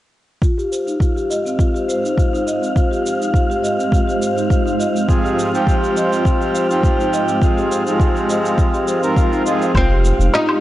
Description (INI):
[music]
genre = organic downtempo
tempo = 103 BPM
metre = 4/4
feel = straight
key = F minor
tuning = A4 = 441 Hz
[part]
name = granular cloud pad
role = sustained chords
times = 1.2-10.6 s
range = Ab3 to C6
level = -24 LUFS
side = equal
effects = built-in reverb, sidechain pumping
[part]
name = marimba with soft mallets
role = arpeggios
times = 0.4-10.6 s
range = C4 to Eb5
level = -20 LUFS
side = left 1 dB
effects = low-pass filter, ping-pong delay
[part]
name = electronic kick drum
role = drums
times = 0.4-9.9 s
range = none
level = -16 LUFS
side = equal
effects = none
[part]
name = electronic shaker, woodblock and snare drum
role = drums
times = 0.4-10.6 s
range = none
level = -28 LUFS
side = right 1 dB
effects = none
[part]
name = wind-like tuned noise texture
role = texture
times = 0.9-10.6 s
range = F5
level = -26 LUFS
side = equal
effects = built-in reverb
[part]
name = hand-pumped harmonium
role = accompaniment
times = 5.1-9.7 s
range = F3 to Bb4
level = -20 LUFS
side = right 2 dB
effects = sidechain pumping, ping-pong delay
[part]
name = swell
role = sound effects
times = 8.9-9.8 s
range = none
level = -28 LUFS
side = left 2 dB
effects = none
[part]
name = warm sub bass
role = bass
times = 9.7-10.3 s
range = F1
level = -15 LUFS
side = equal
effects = none
[part]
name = oud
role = melody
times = 9.8-10.6 s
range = C4 to Eb4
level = -19 LUFS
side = equal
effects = none
[sound]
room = moderate lush hall reverb, RT60 2.7 s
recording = worn, warbling old tape, cassette tape, warbly pitch drift, nothing above 10.6 kHz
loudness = -15 LUFS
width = side -14 dB against mid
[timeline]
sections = 0.4-9.7 A section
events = swell 8.9-9.7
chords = 0.4 Fm